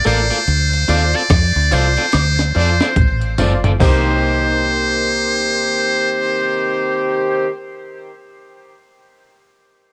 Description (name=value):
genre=roots reggae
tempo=72 BPM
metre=4/4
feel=swing 61% on 16ths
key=C dorian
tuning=A4 = 439 Hz
part: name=trumpet with metal mute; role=melody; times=0.0-7.5 s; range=C5 to D5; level=-21 LUFS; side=equal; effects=tube saturation, tape echo
part: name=bright grand piano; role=stabs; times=0.0-7.5 s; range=Eb4 to D5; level=-28 LUFS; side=equal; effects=cassette tape
part: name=deep dub fingered electric bass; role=bass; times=0.0-7.5 s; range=G1 to F2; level=-20 LUFS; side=equal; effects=none
part: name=tambourine and woodblock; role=percussion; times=0.0-4.2 s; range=none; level=-33 LUFS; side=equal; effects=none
part: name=electric guitar at the edge of break-up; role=accompaniment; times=0.1-7.6 s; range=Bb3 to D5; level=-27 LUFS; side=equal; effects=cassette tape, tape echo
part: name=breakbeat sampler-style drum kit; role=drums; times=0.1-4.0 s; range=crash cymbal, hi-hat, kick drum, rim click, snare drum, toms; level=-19 LUFS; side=equal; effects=overdrive
part: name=mellow horn section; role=second line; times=3.8-7.5 s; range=Eb3 to G4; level=-24 LUFS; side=equal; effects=cassette tape, tape echo
room=light reverb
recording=home recording on cassette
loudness=-16 LUFS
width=mono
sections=0.0-3.8 A section; 3.8-7.1 B section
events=drum fill 2.1-3.8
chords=0.5 Dm7; 3.8 Cm7